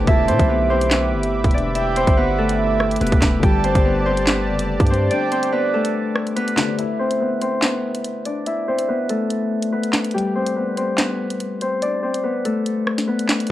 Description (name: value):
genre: hip hop, drill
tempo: 143 BPM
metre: 4/4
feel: half-time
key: E minor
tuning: A4 = 440 Hz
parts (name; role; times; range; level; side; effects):
- Celtic harp; melody; 0.0-13.5 s; G3 to E5; -20 LUFS; left 1 dB; low-pass filter, cassette tape
- dark concert grand piano; accompaniment; 0.0-6.8 s; D3 to C5; -30 LUFS; left 7 dB; low-pass filter, cassette tape
- warm analog pad; sustained chords; 0.0-6.8 s; G4 to D6; -28 LUFS; right 1 dB; chorus, cassette tape
- distorted 808-style bass; bass; 0.0-5.1 s; E1 to B2; -23 LUFS; equal; distortion
- breathy flute-like synth lead; second line; 0.1-5.9 s; D5 to A5; -26 LUFS; right 9 dB; chorus, cassette tape, tape echo
- drill drum kit; drums; 0.1-13.5 s; handclaps, hi-hat, kick drum, rim click, snare drum; -20 LUFS; equal; cassette tape
room: light reverb, digital ambience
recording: home recording on cassette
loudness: -17 LUFS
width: side -14 dB against mid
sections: 0.0-6.8 A section; 6.8-13.5 B section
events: break 5.1-6.8, 6.8-13.5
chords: 0.1 Em7; 3.4 Gsus2; 6.8 E5; 10.1 Gsus2